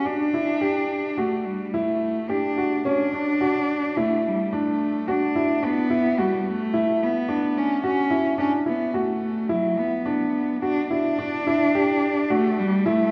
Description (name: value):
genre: contemporary instrumental, contemporary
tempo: 108 BPM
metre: 5/4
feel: straight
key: unclear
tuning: A4 = 443 Hz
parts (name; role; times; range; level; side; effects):
- warm cello; melody; 0.0-13.1 s; F#3 to D4; -26 LUFS; equal; none
- warm grand piano; arpeggios; 0.1-13.1 s; C#4 to G4; -26 LUFS; equal; none
room: wet church reverb, RT60 3.3 s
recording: recorded in a church or concert hall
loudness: -23 LUFS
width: mono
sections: 0.0-11.2 A section; 11.2-13.1 A section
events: none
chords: 0.1 A7sus4; 2.9 Dmaj9; 5.6 Gmaj13 (rootless); 11.2 Em11